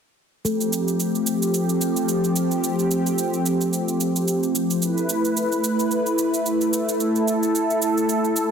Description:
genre	organic downtempo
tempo	110 BPM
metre	4/4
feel	swing 56% on 16ths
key	unclear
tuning	A4 = 439 Hz
part	warm analog pad	sustained chords	0.4-8.5 s	F3 to B4	-21 LUFS	equal	chorus
part	quartz singing bowl	texture	0.4-8.5 s	A3 to A4	-29 LUFS	left 4 dB	none
part	cabasa	drums	0.5-8.5 s	none	-29 LUFS	right 4 dB	studio reverb
room	wet lush hall reverb, RT60 1.8 s, small room reverb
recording	dense, heavily limited modern master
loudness	-20 LUFS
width	side -7 dB against mid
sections	0.4-8.5 A section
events	none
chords	0.4 F; 4.8 A5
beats	| 0.44 0.99 1.53 2.08 | 2.62 3.17 3.72 4.26 | 4.81 5.35 5.90 6.44 | 6.99 7.53 8.08

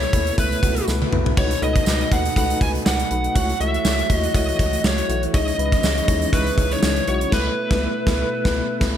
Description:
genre	1980s-style pop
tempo	121 BPM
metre	4/4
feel	swing 55% on 16ths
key	unclear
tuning	A4 = 440 Hz
part	lead guitar through a small cranked amp	melody	0.0-8.8 s	B4 to G#5	-24 LUFS	equal	overdrive, tape echo
part	soft electric-piano-like synth keys	accompaniment	0.0-9.0 s	G#3 to C#5	-26 LUFS	left 3 dB	chorus, tremolo
part	ensemble organ-string	sustained chords	0.0-9.0 s	B2 to F#4	-29 LUFS	equal	ensemble chorus
part	rubbery square bass	bass	0.0-9.0 s	B1 to D#2	-25 LUFS	equal	none
part	gated 80s drum kit	drums	0.0-9.0 s	crash cymbal, hi-hat, kick drum, snare drum, splash cymbal, toms	-21 LUFS	equal	gated reverb
part	tambourine	percussion	0.9-7.0 s	none	-34 LUFS	right 9 dB	none
room	light reverb, studio reverb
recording	none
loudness	-18 LUFS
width	side -10 dB against mid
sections	0.0-9.0 A section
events	drum fill 0.9-1.4; band accent 7.3-9.0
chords	0.0 Asus2/C#; 1.4 B7/C#; 3.4 F#m7/C#; 5.3 C#madd9; 7.3 Asus2/C#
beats	0.38 0.88 | 1.37 1.87 2.37 2.86 | 3.36 3.85 4.35 4.84 | 5.34 5.84 6.33 6.83 | 7.32 7.82 8.31 8.81

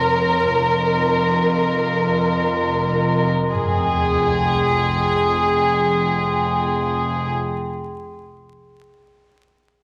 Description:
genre	cinematic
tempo	free time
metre	none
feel	none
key	F minor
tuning	A4 = 437 Hz
part	clear studio violin section	melody	0.0-7.3 s	Ab4 to Bb4	-22 LUFS	equal	none
part	glass harmonica	sustained chords	0.0-7.3 s	Ab4 to C6	-27 LUFS	equal	none
part	warm studio cello section	bass	0.0-7.3 s	F2	-27 LUFS	equal	none
part	warm studio double bass section	bass	0.0-7.3 s	F1	-28 LUFS	equal	none
part	sub drop	sound effects	3.5-7.5 s	none	-31 LUFS	equal	none
room	wet scoring stage reverb, RT60 1.7 s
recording	vinyl crackle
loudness	-19 LUFS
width	mono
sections	0.0-3.5 A section; 3.5-6.5 B section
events	impact 3.5-6.5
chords	0.0 Bbmadd9/F; 0.5 Cm7/F; 3.5 Fmadd9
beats	free time

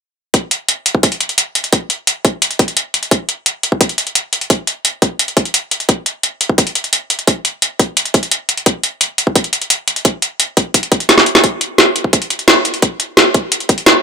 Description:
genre	dark technical drum and bass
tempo	173 BPM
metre	4/4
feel	straight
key	none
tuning	none
part	drum and bass drum kit	drums	0.3-13.9 s	hi-hat, snare drum	-12 LUFS	equal	none
part	electronic kick drum	drums	0.3-13.8 s	none	-14 LUFS	equal	high-pass filter on kick, high-pass filter on room
room	light reverb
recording	none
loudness	-12 LUFS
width	side -6 dB against mid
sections	0.3-14.0 A section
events	drum fill 11.1-11.4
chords	none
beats	| 0.34 0.69 1.03 1.38 | 1.73 2.07 2.42 2.77 | 3.11 3.46 3.81 4.15 | 4.50 4.85 5.19 5.54 | 5.89 6.23 6.58 6.93 | 7.28 7.62 7.97 8.31 | 8.66 9.01 9.36 9.70 | 10.05 10.40 10.74 11.09 | 11.44 11.78 12.13 12.48 | 12.82 13.17 13.52 13.87

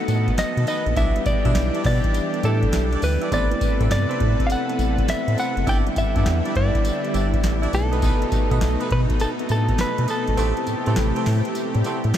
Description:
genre	R&B, new jack swing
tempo	102 BPM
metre	4/4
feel	swing 66% on 16ths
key	A dorian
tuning	A4 = 439 Hz
part	direct-recorded clean electric guitar	melody	0.0-12.2 s	A4 to G5	-26 LUFS	equal	diffuse ambient delay
part	tine electric piano	accompaniment	0.0-12.2 s	G3 to F#5	-27 LUFS	left 1 dB	overdrive, medium stereo tremolo
part	lush unison pad	sustained chords	0.0-12.2 s	B2 to B4	-29 LUFS	left 1 dB	chorus
part	round analog bass	bass	0.1-12.1 s	F#1 to B2	-22 LUFS	equal	none
part	booming analog drum machine	drums	0.1-12.2 s	hi-hat, kick drum, snare drum, tambourine	-25 LUFS	equal	none
part	mellow horn section	stabs	0.7-12.0 s	A3 to D5	-32 LUFS	right 2 dB	diffuse ambient delay
room	moderate huge ambient reverb, RT60 7.4 s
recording	dreamy mix soaked in reverb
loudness	-19 LUFS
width	side -10 dB against mid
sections	0.0-12.2 A section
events	kick muted 10.4-12.2; tine electric piano fill 11.6-12.2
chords	0.0 B7; 1.0 Em7/B; 3.3 Amadd9; 5.7 Em7/G; 7.7 B7; 10.4 Am7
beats	0.38 | 0.97 1.55 2.14 2.73 | 3.32 3.91 4.50 5.08 | 5.67 6.26 6.85 7.44 | 8.03 8.61 9.20 9.79 | 10.38 10.97 11.55 12.14

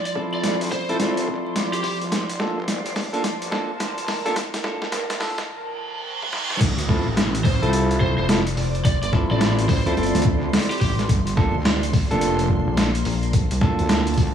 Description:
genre	glitch hop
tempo	107 BPM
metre	4/4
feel	swing 63% on 16ths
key	D minor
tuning	A4 = 440 Hz
part	ethereal airy pad	texture	0.0-14.3 s	F3 to C6	-31 LUFS	equal	ensemble chorus, built-in reverb, phaser, sidechain pumping
part	lead guitar through a small cranked amp	melody	0.1-2.0, 7.4-10.9 s	G4 to D5	-29 LUFS	right 1 dB	overdrive, vintage 12-bit sampler grit, tape echo
part	boom bap sampler-style drum kit	drums	0.1-14.3 s	crash cymbal, hi-hat, snare drum, toms	-25 LUFS	equal	overdrive, studio reverb
part	clean electric guitar	stabs	0.2-14.3 s	Bb3 to A4	-26 LUFS	equal	sidechain pumping, tape echo
part	electronic kick drum	drums	0.2-14.3 s	none	-21 LUFS	equal	overdrive, high-pass filter on kick, studio reverb
part	wobble bass	bass	0.4-14.3 s	F1 to G2	-24 LUFS	equal	chorus, tube saturation, high-pass filter
part	reverse cymbal and downlifter	sound effects	5.7-11.1 s	none	-31 LUFS	right 2 dB	none
part	rubbery square bass	bass	8.2-13.8 s	F1 to D2	-24 LUFS	left 1 dB	none
room	light reverb, digital ambience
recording	vinyl crackle, high-pass filter, studio ambience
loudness	-19 LUFS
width	side -8 dB against mid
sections	0.0-6.6 A section; 6.6-14.3 B section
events	build-up 0.0-6.6; drum fill 0.0-5.5, 6.0-6.6; filter sweep 0.0-6.6; break 5.5-6.6; reverse cymbal 5.7-6.6; drop 6.6-14.3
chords	0.0 Dm7; 2.1 Gm9; 6.6 Dm7; 11.1 Gm9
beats	0.44 1.00 1.56 | 2.12 2.68 3.24 3.80 | 4.36 4.92 5.49 6.04 | 6.61 7.17 7.73 8.29 | 8.85 9.41 9.97 10.53 | 11.09 11.65 12.21 12.77 | 13.34 13.90

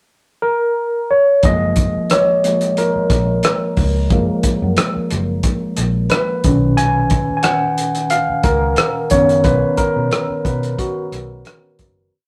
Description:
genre	lush 1970s-style soul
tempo	90 BPM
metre	4/4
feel	swing 54% on 16ths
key	F# major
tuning	A4 = 443 Hz
part	mellow tine electric piano	accompaniment	0.4-12.2 s	A#2 to G#5	-18 LUFS	equal	none
part	vintage muted fingered electric bass	bass	1.4-12.1 s	F#1 to B2	-23 LUFS	equal	none
part	cloth-damped thuddy drum kit	drums	1.4-12.0 s	hi-hat, kick drum, rim click	-21 LUFS	equal	none
room	moderate studio reverb, RT60 0.7 s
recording	rough rehearsal-room recording, tube saturation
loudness	-16 LUFS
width	mono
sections	0.0-1.4 pickup bar; 1.4-12.1 verse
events	tine electric piano solo 1.4-12.1; fade-out 9.5-12.1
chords	0.0 N.C.; 1.4 F#maj7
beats	0.09 0.76 | 1.43 2.10 2.77 3.44 | 4.11 4.77 5.44 6.11 | 6.78 7.45 8.12 8.79 | 9.46 10.12 10.79 11.46

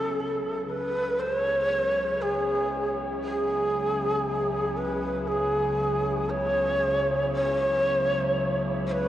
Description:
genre	dark ambient drone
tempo	free time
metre	none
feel	none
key	C# minor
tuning	A4 = 438 Hz
part	breathy long shakuhachi	melody	0.0-9.1 s	G#4 to C#5	-25 LUFS	equal	tape echo
part	warm studio cello section	sustained chords	0.0-9.1 s	C#3 to E4	-36 LUFS	equal	none
part	dark baby grand piano	arpeggios	0.0-9.1 s	C#3 to F#4	-42 LUFS	left 1 dB	tape echo
part	overtone-sweeping drone	drone	0.2-9.1 s	C#2 to C#3	-33 LUFS	left 1 dB	chorus, built-in reverb
part	quartz singing bowl	texture	0.0-9.1 s	none	barely audible	none	none
room	wet cathedral reverb, RT60 6.2 s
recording	worn, warbling old tape, cassette tape, warbly pitch drift, nothing above 11.0 kHz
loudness	-24 LUFS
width	side -12 dB against mid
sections	0.0-9.1 A section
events	fade-in on synth drone 0.0-9.1; fade-in on cello section 0.0-9.1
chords	0.0 C#m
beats	free time

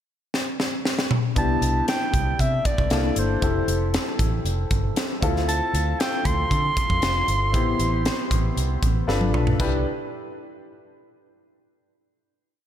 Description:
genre	polished 1980s jazz-funk pop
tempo	116 BPM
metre	4/4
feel	straight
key	C major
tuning	A4 = 441 Hz
part	crisp fusion drum kit	drums	0.3-9.7 s	crash cymbal, hi-hat, kick drum, snare drum, toms	-24 LUFS	equal	none
part	breathy soprano saxophone	melody	1.4-9.1 s	C5 to C6	-26 LUFS	right 1 dB	slapback echo
part	clear baby grand piano	accompaniment	1.4-9.8 s	Bb3 to B4	-27 LUFS	left 3 dB	wide subtle chorus, slapback echo
part	vintage muted fingered electric bass	bass	1.4-9.8 s	F1 to D3	-24 LUFS	equal	none
room	moderate lush hall reverb, RT60 2.5 s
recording	big arena sound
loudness	-20 LUFS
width	side -10 dB against mid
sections	0.0-1.4 pickup bar; 1.4-9.6 verse; 9.6-11.7 final chord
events	drum fill 0.3-1.4, 9.1-9.6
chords	0.0 N.C.; 1.4 Cmaj9; 2.9 C13; 3.4 Fmaj9; 5.2 Dm9; 7.5 Am7; 9.1 G7; 9.6 Cmaj9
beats	0.33 0.85 | 1.36 1.88 2.40 2.91 | 3.42 3.94 4.45 4.97 | 5.48 6.00 6.51 7.02 | 7.54 8.05 8.57 9.08 | 9.60

